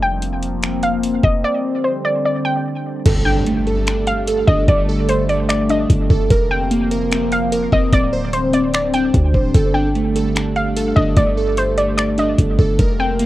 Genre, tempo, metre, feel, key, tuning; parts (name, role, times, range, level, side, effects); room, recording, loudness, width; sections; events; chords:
hip hop, atmospheric cloud-rap; 148 BPM; 4/4; half-time; G minor; A4 = 440 Hz
warbly dusty pluck; melody; 0.0-13.3 s; C5 to G5; -21 LUFS; equal; chorus, cassette tape, tape echo
warbly tape-like pad; sustained chords; 0.0-13.3 s; C3 to C4; -23 LUFS; left 1 dB; chorus, built-in reverb, phaser, sidechain pumping, cassette tape
warm 808-style bass; bass; 0.0-13.3 s; D1 to D2; -21 LUFS; equal
smooth R&B drum kit; drums; 0.2-13.3 s; crash cymbal, finger snaps, hi-hat, kick drum; -18 LUFS; equal
glassy digital keys; arpeggios; 3.1-13.3 s; A3 to C5; -20 LUFS; right 1 dB; chorus, cassette tape, tape echo
impact; sound effects; 3.1-4.7 s; -27 LUFS; equal
little or no reverb; home recording on cassette; -14 LUFS; side -15 dB against mid
0.0-3.1 A section; 3.1-13.3 B section
impact 3.1-4.7
0.0 Fsus4; 1.4 D7sus4; 3.1 Gsus2; 6.3 Fsus4; 7.9 D7sus4; 9.5 Gsus2